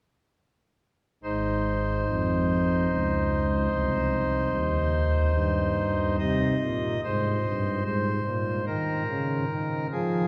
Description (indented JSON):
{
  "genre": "classical, chorale-style piece for pipe organ",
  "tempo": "73 BPM",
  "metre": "3/4",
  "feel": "rubato",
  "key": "Ab major",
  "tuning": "A4 = 440 Hz",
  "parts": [
    { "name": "pipe organ, cornet", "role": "solo", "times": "1.2-10.3 s", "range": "Ab1 to Eb5", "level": "-26 LUFS", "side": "equal", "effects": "none" }
  ],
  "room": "wet cathedral reverb, RT60 5.9 s",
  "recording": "heard from further back in the room",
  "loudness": "-26 LUFS",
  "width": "mono",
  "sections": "1.2-6.2 A section; 6.2-10.3 B section",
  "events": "none",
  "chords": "1.2 Ab; 7.9 Abadd9; 8.7 Eb5"
}